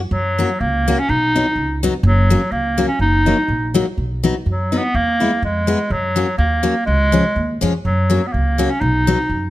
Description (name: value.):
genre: alpine folk, alpine dance band.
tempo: 124 BPM.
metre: 2/4.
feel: swing 54% on 8ths, rubato.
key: F# major.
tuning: A4 = 440 Hz.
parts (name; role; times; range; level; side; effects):
upright bass; bass; 0.0-9.5 s; F#1 to F#2; -19 LUFS; right 1 dB; none.
bright clarinet; melody; 0.1-9.5 s; F#3 to D#4; -18 LUFS; equal; none.
picked steel-string acoustic guitar; accompaniment; 0.4-9.2 s; E#3 to F#4; -20 LUFS; left 3 dB; none.
room: light reverb.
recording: close, detailed microphones.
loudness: -15 LUFS.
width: side -16 dB against mid.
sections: 0.1-9.5 A section.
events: none.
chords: 0.1 F#; 1.1 B; 2.0 F#; 3.0 D#m/F#; 4.0 B; 4.9 E; 5.9 F#; 6.9 C#; 7.8 F#; 8.8 B.